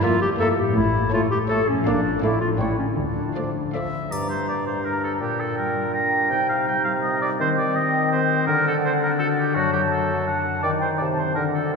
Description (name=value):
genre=cinematic, playful, whimsical film cue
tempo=165 BPM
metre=3/4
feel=straight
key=D minor, G minor from 4.1 s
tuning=A4 = 440 Hz
part: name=rich studio violin section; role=melody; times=0.0-4.0 s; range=E5 to A5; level=-39 LUFS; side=left 3 dB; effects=none
part: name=clear chamber violin section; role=second line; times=0.0-4.0 s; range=Bb4 to D5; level=-38 LUFS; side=left 2 dB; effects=none
part: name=warm clarinet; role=second line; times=0.0-11.8 s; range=C4 to A4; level=-26 LUFS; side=left 2 dB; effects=none
part: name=warm oboe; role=second line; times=0.0-11.8 s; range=F#4 to Bb5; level=-25 LUFS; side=right 2 dB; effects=none
part: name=dark bassoon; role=accompaniment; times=0.0-11.8 s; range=G2 to Bb3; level=-28 LUFS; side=right 2 dB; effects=none
part: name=rich chamber viola section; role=accompaniment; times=0.0-4.0 s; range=A3 to D4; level=-33 LUFS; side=equal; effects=none
part: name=concert harp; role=arpeggios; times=0.0-11.8 s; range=F#2 to A4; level=-27 LUFS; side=left 6 dB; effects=none
part: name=rich chamber double bass section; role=bass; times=0.8-3.3 s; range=A1 to D2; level=-30 LUFS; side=right 2 dB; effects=none
part: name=rich symphonic cello section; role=bass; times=0.8-3.3 s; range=A2 to D3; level=-30 LUFS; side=right 2 dB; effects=none
part: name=mellow large flute ensemble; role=second line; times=4.1-11.8 s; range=F#5 to Bb5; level=-28 LUFS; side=right 1 dB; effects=none
part: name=triangle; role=percussion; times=4.1-4.8 s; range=none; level=-42 LUFS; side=left 3 dB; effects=none
room=wet cathedral reverb, RT60 4.9 s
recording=recorded in a church or concert hall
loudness=-20 LUFS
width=side -4 dB against mid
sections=0.0-4.1 A section; 4.1-11.8 B section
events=none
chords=0.0 Edim/G; 0.8 A; 1.9 Bb; 2.2 Dm/A; 3.0 Dm; 4.1 Gm; 5.2 Gm/Bb; 6.3 Cm; 7.4 Cm/Eb; 8.5 D; 9.6 D/F#; 10.6 Eb6; 11.0 Adim/C; 11.4 D